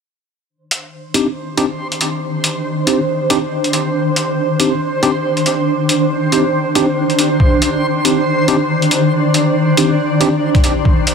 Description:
deep dubstep; 139 BPM; 4/4; swing 58% on 16ths, half-time; C minor; A4 = 440 Hz
granular cloud pad; sustained chords; 1.5-11.1 s; Eb3 to D5; -16 LUFS; equal; built-in reverb
backwards swelling texture; texture; 0.8-11.1 s; C5; -22 LUFS; equal; built-in reverb
electronic hi-hat; drums; 0.7-11.1 s; -18 LUFS; left 1 dB; overdrive, studio reverb
tine electric piano; stabs; 1.1-10.3 s; C4 to G4; -19 LUFS; equal; medium stereo tremolo, low-pass filter, dub echo
electronic kick drum; drums; 7.4-7.5, 10.5-11.0 s; -13 LUFS; equal; overdrive, studio reverb
moderate huge ambient reverb, RT60 7.2 s; -13 LUFS; side -6 dB against mid
0.5-11.1 A section
filter sweep on tine electric piano 0.5-11.1
0.5 Cmadd9

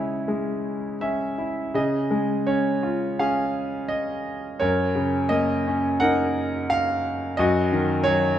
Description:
classical, lyrical solo piano; 79-89 BPM; 4/4; rubato; Db major; A4 = 437 Hz
bright grand piano; solo; 0.0-8.4 s; Gb2 to Gb5; -21 LUFS; equal
moderate recital hall reverb, RT60 1.7 s; dark, warm production; -21 LUFS; side -10 dB against mid
0.0-1.8 A section; 1.8-8.4 B section
0.0 C#m; 1.8 Db; 4.6 Gb6; 7.4 Ebm/Gb

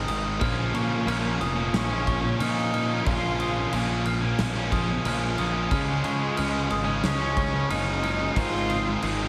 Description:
post-rock; 91 BPM; 4/4; straight; Bb minor; A4 = 440 Hz
glockenspiel with hard plastic mallets; arpeggios; 0.0-9.3 s; Db6 to F6; -36 LUFS; equal; tape echo
thick fuzz guitar; riff; 0.0-9.3 s; Ab2 to F4; -32 LUFS; equal; distortion
fuzz picked electric bass; bass; 0.0-9.3 s; F1 to Db3; -32 LUFS; equal; overdrive
huge arena drum kit; drums; 0.1-9.2 s; crash cymbal, kick drum, snare drum; -34 LUFS; equal
bright cello; melody; 0.4-9.0 s; Ab3 to F4; -33 LUFS; equal; tape echo
tight distorted guitar; riff; 0.4-9.3 s; Ab2 to Eb4; -34 LUFS; equal; distortion
light reverb, small room ambience; -25 LUFS; mono
0.0-9.3 A section
0.4 Bbm; 5.7 Dbadd9; 8.4 Ab

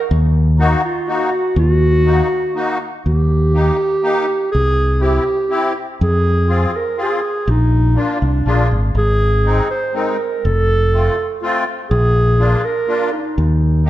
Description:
alpine folk, alpine dance band; 122 BPM; 3/4; straight; Eb minor, Eb major from 3.1 s; A4 = 440 Hz
mellow clarinet; melody; 0.0-13.9 s; D4 to C5; -18 LUFS; right 1 dB
fingered electric bass; bass; 0.1-13.9 s; F1 to F2; -15 LUFS; equal
musette accordion; accompaniment; 0.6-13.9 s; Ab3 to Ab4; -21 LUFS; left 2 dB
light reverb; dark, warm production; -14 LUFS; side -14 dB against mid
0.0-3.1 A section; 3.1-13.9 B section
0.0 Ebm; 3.1 Eb; 4.5 C; 6.0 Fm; 7.5 Bb; 9.0 Ab; 10.4 F; 11.9 Bb; 13.4 N.C.

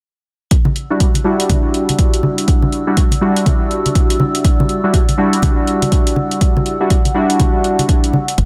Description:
deep house; 122 BPM; 4/4; swing 60% on 16ths; E minor; A4 = 439 Hz
warbly tape-like pad; sustained chords; 1.3-8.5 s; A3 to E6; -27 LUFS; equal; chorus, built-in reverb, sidechain pumping
electronic hi-hat; drums; 0.5-8.5 s; -25 LUFS; equal; overdrive
electronic kick drum; drums; 0.5-8.5 s; -16 LUFS; equal
congas; percussion; 0.7-8.3 s; -21 LUFS; equal
warm analog keys; stabs; 0.9-8.1 s; G3 to F#4; -19 LUFS; equal; chorus, phaser, sidechain pumping, low-pass filter, dub echo
sub bass with octave; bass; 8.4-8.5 s; F#1; -16 LUFS; equal; sidechain pumping
light reverb, digital ambience; -15 LUFS; mono
0.5-8.5 A section
0.5 Em9

